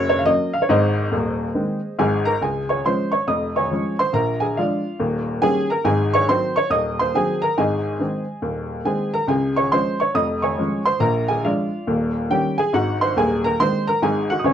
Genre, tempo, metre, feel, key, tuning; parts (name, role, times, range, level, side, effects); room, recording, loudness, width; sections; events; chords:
jazz, stride piano; 140 BPM; 4/4; swing 64% on 8ths; A4 = 436 Hz
warm upright piano; solo; 0.0-14.5 s; Eb1 to Eb6; -18 LUFS; equal
light reverb; worn, warbling old tape, cassette tape, warbly pitch drift; -18 LUFS; side -9 dB against mid
0.0-2.4 A section; 2.4-14.5 B section
0.0 Gb; 0.7 Ab; 2.4 Db; 3.3 Db/F; 4.1 Bb7; 5.0 Eb7; 5.9 Ab7; 7.6 Ab; 9.3 Db; 10.2 Db/F; 11.0 Bb7; 11.9 Eb7; 12.7 Ab7